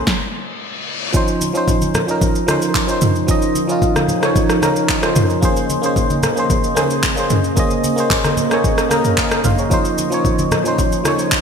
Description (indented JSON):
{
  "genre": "amapiano",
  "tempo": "112 BPM",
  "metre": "4/4",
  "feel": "straight",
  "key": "unclear",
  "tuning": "A4 = 441 Hz",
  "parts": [
    { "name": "barking FM electric piano", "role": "accompaniment", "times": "0.0-11.4 s", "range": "F3 to Bb5", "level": "-18 LUFS", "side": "right 1 dB", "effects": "chorus" },
    { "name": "deep dark ambient pad", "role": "sustained chords", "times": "0.0-11.4 s", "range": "Db3 to Eb5", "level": "-23 LUFS", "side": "equal", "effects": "chorus, built-in reverb" },
    { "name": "deep house drum kit", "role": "drums", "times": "0.1-11.4 s", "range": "handclaps, kick drum, rim click, shaker, snare drum, toms", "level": "-18 LUFS", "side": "equal", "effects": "overdrive, gated reverb" },
    { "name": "reverse cymbal", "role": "sound effects", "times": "0.3-1.1 s", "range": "none", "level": "-27 LUFS", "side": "left 5 dB", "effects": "none" },
    { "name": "congas", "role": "percussion", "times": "1.4-11.2 s", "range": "none", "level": "-26 LUFS", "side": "left 2 dB", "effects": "none" }
  ],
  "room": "moderate lush hall reverb, RT60 2.1 s",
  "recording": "bright 1980s-style digital production",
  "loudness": "-14 LUFS",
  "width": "side -6 dB against mid",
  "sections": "0.0-1.1 A section; 1.1-11.4 B section",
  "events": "filter sweep 0.0-1.1; stop 0.1-1.1; reverse cymbal 0.3-1.1; FM electric piano fill 8.6-9.7",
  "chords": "0.0 Bbm9; 1.1 Dbmaj9; 5.4 Bbm9; 9.7 Dbmaj9"
}